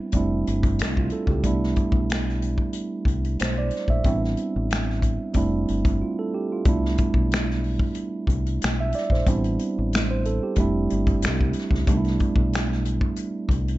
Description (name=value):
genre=R&B, neo-soul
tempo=92 BPM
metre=4/4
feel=swing 54% on 16ths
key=C major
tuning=A4 = 440 Hz
part: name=mellow tine electric piano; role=accompaniment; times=0.0-13.8 s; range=G3 to E5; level=-25 LUFS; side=right 3 dB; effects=none
part: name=deep dub fingered electric bass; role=bass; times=0.1-13.8 s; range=F1 to Db2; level=-25 LUFS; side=left 1 dB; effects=none
part: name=unplugged drum kit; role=drums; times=0.1-13.8 s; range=finger snaps, hi-hat, kick drum, snare drum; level=-24 LUFS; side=left 1 dB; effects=none
room=little or no reverb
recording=dark, warm production, nothing above 7.8 kHz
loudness=-21 LUFS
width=side -17 dB against mid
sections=0.0-13.8 A section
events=break 6.0-6.7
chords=0.1 F69; 1.4 Cmaj9; 4.0 Am9; 5.3 F69; 6.7 Cmaj9; 9.3 Am9; 10.6 F69; 11.9 Cmaj9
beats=0.13 0.78 | 1.44 2.09 2.74 3.39 | 4.04 4.70 5.35 6.00 | 6.65 7.31 7.96 8.61 | 9.26 9.91 10.57 11.22 | 11.87 12.52 13.18